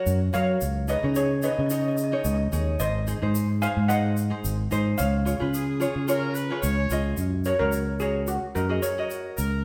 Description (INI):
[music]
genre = calypso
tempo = 110 BPM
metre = 4/4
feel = straight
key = F# major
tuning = A4 = 440 Hz
[part]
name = steel pan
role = melody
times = 0.0-9.6 s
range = F#4 to G#5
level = -31 LUFS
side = equal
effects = none
[part]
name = tenor ukulele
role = accompaniment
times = 0.0-9.4 s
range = D#4 to D#5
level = -33 LUFS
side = equal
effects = none
[part]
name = fingered electric bass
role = bass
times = 0.1-9.6 s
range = G#1 to F#3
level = -28 LUFS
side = equal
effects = none
[part]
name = egg shaker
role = percussion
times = 0.1-9.5 s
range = none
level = -41 LUFS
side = equal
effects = none
[part]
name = clear horn section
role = second line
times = 5.5-9.6 s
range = G#4 to C#5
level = -35 LUFS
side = equal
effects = none
[sound]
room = wet large studio reverb, RT60 1.4 s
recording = band playing live in one room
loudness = -25 LUFS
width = mono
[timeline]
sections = 0.0-7.2 A section; 7.2-9.6 B section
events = steel pan solo 7.2-9.6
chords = 0.0 F#maj7; 0.6 C#sus2; 2.8 G#7; 5.0 C#; 7.2 F#6